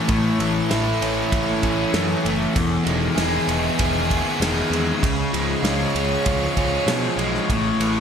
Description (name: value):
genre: rock, shoegaze and dream pop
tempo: 97 BPM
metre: 4/4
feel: straight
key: A lydian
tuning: A4 = 442 Hz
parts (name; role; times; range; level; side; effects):
- icy glass pad; sustained chords; 0.0-8.0 s; E4 to C#6; -28 LUFS; right 2 dB; chorus, built-in reverb
- crunchy overdriven guitar; riff; 0.0-8.0 s; E2 to G#4; -24 LUFS; right 4 dB; reverse reverb
- overdriven electric guitar; riff; 0.0-8.0 s; E2 to C#4; -24 LUFS; left 6 dB; wide subtle chorus
- growling picked electric bass; bass; 0.1-8.0 s; E1 to B2; -27 LUFS; equal; overdrive
- loose indie drum kit; drums; 0.1-7.9 s; kick drum, ride cymbal, snare drum; -26 LUFS; equal; none
room: wet recital hall reverb, RT60 1.5 s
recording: none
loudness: -18 LUFS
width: side -7 dB against mid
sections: 0.0-8.0 A section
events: none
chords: 0.0 A; 2.6 Emaj7; 5.0 C#; 7.5 A